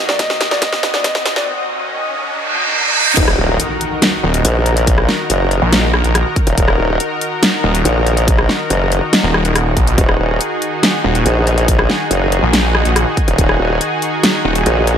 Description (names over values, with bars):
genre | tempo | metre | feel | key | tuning
heavy wobble dubstep | 141 BPM | 4/4 | half-time | Eb minor | A4 = 438 Hz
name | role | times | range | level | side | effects
lush unison pad | sustained chords | 0.0-15.0 s | Eb2 to Eb5 | -19 LUFS | left 1 dB | chorus, sidechain pumping
riser, reverse cymbal and impact | sound effects | 0.6-4.9 s | none | -18 LUFS | right 2 dB | none
warm grand piano | melody | 0.1-1.5 s | D5 to Eb5 | -21 LUFS | equal | digital delay
dubstep drum kit | drums | 0.1-15.0 s | crash cymbal, hi-hat, rim click, snare drum | -17 LUFS | equal | high-pass filter on hats, high-pass filter on snare, high-pass filter on cymbals, high-pass filter on room
electronic kick drum | drums | 0.2-13.5 s | none | -15 LUFS | equal | none
formant-sweep wobble bass | bass | 3.2-15.0 s | Eb1 to Bb1 | -14 LUFS | equal | chorus, overdrive
snarling distorted saw bass | bass | 4.2-14.6 s | Eb1 to Bb1 | -14 LUFS | equal | distortion, overdrive
room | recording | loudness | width
light reverb, digital ambience | high-pass filter | -12 LUFS | side -8 dB against mid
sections
0.0-3.2 A section; 3.2-15.0 B section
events
build-up 0.0-3.2; drum fill 0.0-1.5; filter sweep on analog synth pad 0.0-3.2; filter sweep 0.0-3.2; riser 0.6-3.2; reverse cymbal 2.3-3.2; drop 3.2-15.0; impact 3.2-4.9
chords
0.0 Ebm